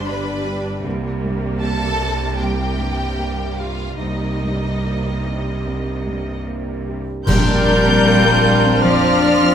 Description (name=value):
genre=cinematic, emotional film score for orchestra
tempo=72-80 BPM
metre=4/4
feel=rubato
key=unclear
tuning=A4 = 440 Hz
part: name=rich studio violin section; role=melody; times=0.0-9.5 s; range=Eb5 to G6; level=-26 LUFS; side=left 2 dB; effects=none
part: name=clear studio violin section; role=second line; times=0.0-9.5 s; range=Bb3 to B4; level=-27 LUFS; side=left 2 dB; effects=none
part: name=dark baby grand piano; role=accompaniment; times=0.0-9.5 s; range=Bb1 to G4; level=-24 LUFS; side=right 1 dB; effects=none
part: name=rich studio viola section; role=accompaniment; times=0.0-9.5 s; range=G3 to D5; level=-24 LUFS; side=equal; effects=none
part: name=clear studio double bass section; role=bass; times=0.0-9.5 s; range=G1 to C2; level=-24 LUFS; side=right 2 dB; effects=none
part: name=rich studio cello section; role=bass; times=0.0-9.5 s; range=G2 to G3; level=-23 LUFS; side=left 1 dB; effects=none
part: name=hollow small flute group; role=second line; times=7.2-9.5 s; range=C6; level=-24 LUFS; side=right 7 dB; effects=none
part: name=warm clarinet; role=second line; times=7.3-9.5 s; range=D4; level=-27 LUFS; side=left 2 dB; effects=none
part: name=warm oboe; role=second line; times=7.3-9.5 s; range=F5 to G5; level=-22 LUFS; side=equal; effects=none
part: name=dark French horn section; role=sustained chords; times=7.3-9.5 s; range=C4 to D4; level=-21 LUFS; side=left 5 dB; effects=none
part: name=clash cymbals and concert bass drum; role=percussion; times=7.3-8.8 s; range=none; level=-23 LUFS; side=equal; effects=none
part: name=timpani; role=percussion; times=7.3-8.4 s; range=Bb2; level=-23 LUFS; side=equal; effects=none
room=light reverb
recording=none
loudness=-16 LUFS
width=side -8 dB against mid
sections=0.0-7.3 A section; 7.3-9.5 B section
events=band accent 7.3-8.1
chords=0.0 G; 0.8 Cm7; 7.3 Bbadd9